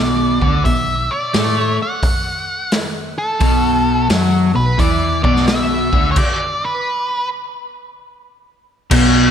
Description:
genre	blues rock power trio and southern rock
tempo	87 BPM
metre	4/4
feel	swing 66% on 8ths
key	B minor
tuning	A4 = 437 Hz
part	octave-fuzz lead guitar	melody	0.0-7.3 s	A4 to F#5	-20 LUFS	equal	distortion
part	overdriven semi-hollow guitar	riff	0.0-9.3 s	B2 to A3	-17 LUFS	left 1 dB	slapback echo
part	vintage muted picked electric bass	bass	0.0-9.3 s	B1 to A2	-21 LUFS	right 1 dB	none
part	raw garage drum kit	drums	0.4-9.1 s	crash cymbal, hi-hat, kick drum, snare drum	-18 LUFS	equal	none
room	moderate concert hall reverb, RT60 2.4 s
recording	big arena sound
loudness	-14 LUFS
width	side -8 dB against mid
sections	0.0-8.9 A section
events	stop 6.2-8.9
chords	0.0 Bm

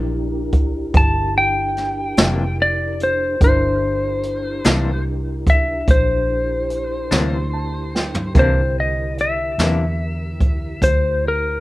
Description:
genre	slow blues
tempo	49 BPM (dotted quarters)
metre	12/8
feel	straight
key	C mixolydian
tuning	A4 = 440 Hz
part	warm upright piano	accompaniment	0.0-11.6 s	C4 to A5	-28 LUFS	right 1 dB	plate reverb
part	mellow tonewheel organ	sustained chords	0.0-11.6 s	D3 to Bb4	-28 LUFS	equal	chorus vibrato, lush chorus, plate reverb
part	vintage muted fingered electric bass	bass	0.0-11.6 s	F1 to E2	-23 LUFS	equal	none
part	jazz brush drum kit	drums	0.5-11.0 s	hi-hat, kick drum, snare drum, toms	-17 LUFS	equal	none
part	clean lap steel guitar	melody	1.0-11.6 s	Bb4 to A5	-20 LUFS	left 1 dB	plate reverb
part	semi-hollow electric guitar	accompaniment	2.2-9.8 s	C3 to D4	-23 LUFS	left 4 dB	tremolo, plate reverb
room	moderate studio ambience, RT60 0.5 s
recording	rough home demo mix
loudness	-16 LUFS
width	side -18 dB against mid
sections	0.0-8.4 A section; 8.4-11.6 B section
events	electric slide guitar solo 0.0-8.4; upright piano fill 7.1-8.4; drum fill 7.9-8.4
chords	0.0 C9

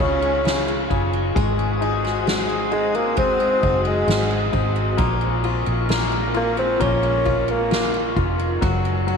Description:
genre	pop ballad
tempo	66 BPM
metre	4/4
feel	straight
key	unclear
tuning	A4 = 440 Hz
part	mellow bassoon	melody	0.0-8.1 s	Ab3 to Db4	-22 LUFS	equal	slapback echo
part	clear baby grand piano	accompaniment	0.0-9.2 s	Db3 to F4	-26 LUFS	left 12 dB	none
part	glassy FM pad	sustained chords	0.0-9.2 s	F4 to Eb6	-26 LUFS	left 2 dB	ensemble chorus, built-in reverb
part	picked steel-string acoustic guitar	arpeggios	0.0-9.2 s	Ab2 to Ab4	-30 LUFS	right 13 dB	none
part	vintage muted fingered electric bass	bass	0.0-9.2 s	F1 to Db2	-24 LUFS	right 1 dB	none
part	soft-mallet drum kit	drums	0.0-9.2 s	kick drum, ride cymbal, snare drum	-25 LUFS	equal	none
room	light reverb, studio reverb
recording	1960s-style stereo with parts hard left and right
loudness	-18 LUFS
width	side -6 dB against mid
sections	0.0-9.2 A section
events	none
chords	0.0 Db; 1.4 Ab7; 5.0 Bbm7; 8.6 Gbsus2

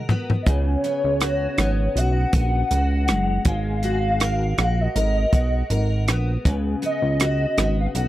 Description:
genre	indie pop, bedroom pop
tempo	80 BPM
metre	4/4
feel	swing 55% on 16ths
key	unclear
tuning	A4 = 443 Hz
part	hollow clarinet-like synth lead	melody	0.0-8.1 s	C#5 to F#5	-25 LUFS	left 1 dB	ensemble chorus, slapback echo
part	picked steel-string acoustic guitar	accompaniment	0.0-8.1 s	C#3 to A#4	-28 LUFS	left 2 dB	ensemble chorus, vibrato effect
part	compact cocktail drum kit	drums	0.1-8.1 s	hi-hat, kick drum, rim click, toms	-21 LUFS	equal	none
part	chorused synth bass	bass	0.5-8.1 s	F#1 to C#2	-21 LUFS	equal	none
room	little or no reverb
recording	dry, close 1970s-style studio recording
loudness	-19 LUFS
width	side -14 dB against mid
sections	0.0-8.1 A section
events	drum fill 0.0-0.5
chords	0.5 C#7sus4; 3.5 G#m9; 6.5 C#7sus4

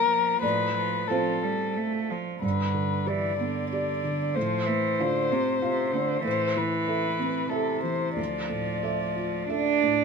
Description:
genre	neoclassical piano and strings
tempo	93 BPM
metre	3/4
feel	uneven beats, rubato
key	unclear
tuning	A4 = 440 Hz
part	dark violin	melody	0.0-9.9 s	A4 to D5	-28 LUFS	left 5 dB	none
part	rich cello	second line	0.0-10.0 s	C3 to D4	-29 LUFS	right 6 dB	none
part	felt-muted upright piano	accompaniment	0.0-10.0 s	D2 to F5	-29 LUFS	right 2 dB	none
room	light reverb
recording	minimal, uncompressed stereo recording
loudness	-24 LUFS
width	side -5 dB against mid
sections	0.0-2.4 A section; 2.4-10.0 B section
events	none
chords	0.4 F/A; 2.4 G; 4.4 F/A; 6.3 Am; 8.2 Dmadd9

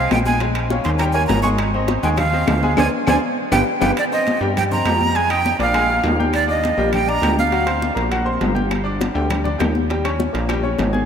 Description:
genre	latin, salsa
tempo	202 BPM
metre	4/4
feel	straight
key	C minor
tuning	A4 = 440 Hz
part	breathy bright jazz flute	melody	0.0-7.9 s	D5 to Db6	-21 LUFS	right 3 dB	none
part	bright grand piano	accompaniment	0.0-11.1 s	F#3 to Ab6	-23 LUFS	left 2 dB	none
part	plucky analog bass	bass	0.0-11.1 s	G1 to G2	-21 LUFS	equal	none
part	bongos	percussion	0.1-3.9, 8.7-11.1 s	none	-28 LUFS	left 6 dB	none
part	claves	percussion	0.1-10.6 s	none	-35 LUFS	left 6 dB	none
part	congas	percussion	0.1-11.1 s	none	-25 LUFS	left 2 dB	none
part	timbales	percussion	0.1-10.9 s	none	-27 LUFS	right 4 dB	none
room	wet cathedral reverb, RT60 6.7 s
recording	in a vast, echoing space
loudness	-16 LUFS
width	side -7 dB against mid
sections	0.0-4.0 A section; 4.0-11.1 B section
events	band accent 2.8-4.0; drum fill 3.5-4.0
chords	0.4 Bbm7; 1.0 Eb7; 1.6 Ab6; 2.8 Ab; 3.4 G7; 4.0 Cm7; 5.2 Fm9; 5.7 Bb5; 6.3 Ebmaj7; 7.5 D7alt; 8.7 G5; 9.9 Eb7

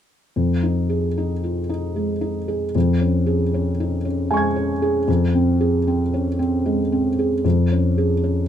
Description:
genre	neoclassical minimalist piano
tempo	76 BPM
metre	3/4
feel	rubato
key	F minor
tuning	A4 = 441 Hz
part	felt-muted upright piano	solo	0.4-8.5 s	F2 to Ab6	-18 LUFS	equal	none
room	light reverb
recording	minimal, uncompressed stereo recording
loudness	-18 LUFS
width	side -9 dB against mid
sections	0.4-8.5 A section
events	none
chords	0.4 Fm7; 2.7 Db/F; 5.1 Ab/F; 7.4 Db/F

